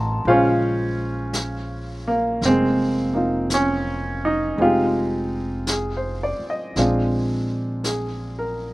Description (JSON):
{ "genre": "jazz ballad", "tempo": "55 BPM", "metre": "4/4", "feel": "swing 66% on 8ths", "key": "Bb minor", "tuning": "A4 = 439 Hz", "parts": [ { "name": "clear baby grand piano", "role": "accompaniment", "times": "0.0-8.7 s", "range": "Db3 to C6", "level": "-20 LUFS", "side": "equal", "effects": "slapback echo" }, { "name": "upright bass", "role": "bass", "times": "0.0-8.7 s", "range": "F1 to Bb1", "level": "-27 LUFS", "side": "equal", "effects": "none" }, { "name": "vintage brush drum kit", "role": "drums", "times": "0.2-8.7 s", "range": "brushed snare drum, hi-hat, snare drum", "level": "-29 LUFS", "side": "equal", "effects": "none" } ], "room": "little or no reverb", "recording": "recorded outdoors, with no room sound", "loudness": "-19 LUFS", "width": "side -19 dB against mid", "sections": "0.3-8.7 A section", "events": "none", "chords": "0.3 Bbm9; 4.6 Fm9; 6.8 Bb9" }